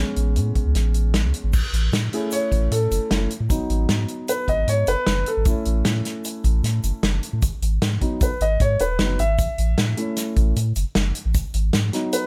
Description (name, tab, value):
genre	progressive instrumental, band music in an uneven meter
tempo	153 BPM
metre	5/4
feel	straight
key	A lydian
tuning	A4 = 445 Hz
part	dark grand piano	accompaniment	0.0-12.3 s	F#3 to E5	-27 LUFS	equal	none
part	warm sub bass	bass	0.0-11.9 s	D#1 to A2	-24 LUFS	equal	none
part	natural country drum kit	drums	0.2-12.2 s	crash cymbal, hi-hat, kick drum, snare drum	-26 LUFS	equal	none
part	tube shaker	percussion	1.5-12.3 s	none	-40 LUFS	equal	none
room	little or no reverb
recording	none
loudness	-21 LUFS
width	mono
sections	0.0-1.5 A section; 1.5-12.3 B section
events	grand piano solo 1.5-12.3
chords	0.0 Amaj7; 1.5 A; 3.5 G#m7; 5.5 A; 7.4 G#m7; 9.4 A; 11.4 G#m7